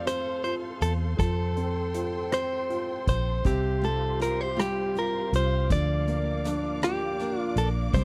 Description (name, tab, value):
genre	six-eight pop ballad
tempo	54 BPM (dotted quarters)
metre	6/8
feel	straight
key	F major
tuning	A4 = 440 Hz
part	direct-recorded clean electric guitar	melody	0.0-8.0 s	G4 to D5	-32 LUFS	equal	none
part	warm upright piano	accompaniment	0.0-8.0 s	C3 to F4	-36 LUFS	equal	none
part	warm studio string section	sustained chords	0.0-8.0 s	Bb3 to D6	-41 LUFS	equal	none
part	vintage muted fingered electric bass	bass	0.0-8.0 s	Bb1 to F2	-31 LUFS	equal	none
part	soft-mallet drum kit	drums	0.1-8.0 s	hi-hat, kick drum, rim click	-31 LUFS	equal	none
part	picked steel-string acoustic guitar	arpeggios	3.4-8.0 s	F3 to G4	-39 LUFS	equal	none
room	little or no reverb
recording	dry, close 1970s-style studio recording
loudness	-27 LUFS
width	mono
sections	0.0-8.0 A section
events	none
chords	0.0 F; 3.5 Csus4; 5.7 Bb/D